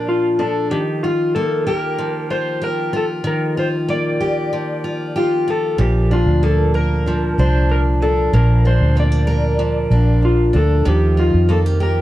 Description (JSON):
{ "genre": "acoustic pop", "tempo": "95 BPM", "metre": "4/4", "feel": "straight", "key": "Bb major", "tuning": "A4 = 440 Hz", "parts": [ { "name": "electric slide guitar", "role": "melody", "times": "0.0-12.0 s", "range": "F4 to D5", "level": "-20 LUFS", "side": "left 2 dB", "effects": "analog delay" }, { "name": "picked steel-string acoustic guitar", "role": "accompaniment", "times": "0.0-12.0 s", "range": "Bb2 to Bb4", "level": "-20 LUFS", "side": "equal", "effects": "none" }, { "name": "flamenco guitar", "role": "arpeggios", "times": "5.8-12.0 s", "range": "F3 to G4", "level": "-26 LUFS", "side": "right 4 dB", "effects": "none" }, { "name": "vintage muted fingered electric bass", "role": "bass", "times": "5.8-12.0 s", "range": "Bb1 to F2", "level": "-15 LUFS", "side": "equal", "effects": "none" } ], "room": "moderate studio reverb, RT60 0.6 s", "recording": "dark, warm production", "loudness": "-15 LUFS", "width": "side -14 dB against mid", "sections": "0.0-12.0 A section", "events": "none", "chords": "0.0 Bb; 0.7 Ebadd9; 5.8 Bb; 10.9 Ebadd9", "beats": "0.08 | 0.71 1.35 1.98 2.62 | 3.25 3.89 4.52 5.16 | 5.79 6.43 7.06 7.69 | 8.33 8.96 9.59 10.23 | 10.86 11.49" }